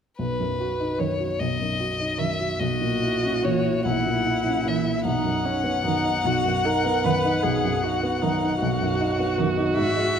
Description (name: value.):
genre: classical, slow romantic movement for piano quartet.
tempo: 47-52 BPM (dotted quarters).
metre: 12/8.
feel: rubato.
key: B major.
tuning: A4 = 440 Hz.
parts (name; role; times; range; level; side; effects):
rich violin; melody; 0.2-10.2 s; B4 to F#5; -26 LUFS; left 5 dB; none.
warm baby grand piano; accompaniment; 0.2-10.2 s; B1 to F#4; -25 LUFS; equal; none.
warm cello; second line; 1.0-9.7 s; D#3 to E3; -30 LUFS; right 7 dB; none.
rich viola; accompaniment; 2.6-10.2 s; C#4 to B4; -27 LUFS; right 4 dB; none.
room: wet recital hall reverb, RT60 1.6 s.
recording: none.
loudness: -21 LUFS.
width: side -7 dB against mid.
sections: 0.2-10.2 A section.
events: none.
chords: 0.2 B; 2.6 A#dim/B; 5.1 B.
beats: | 0.19 1.40 2.60 3.86 | 5.06 6.25 7.44 8.62 | 9.77.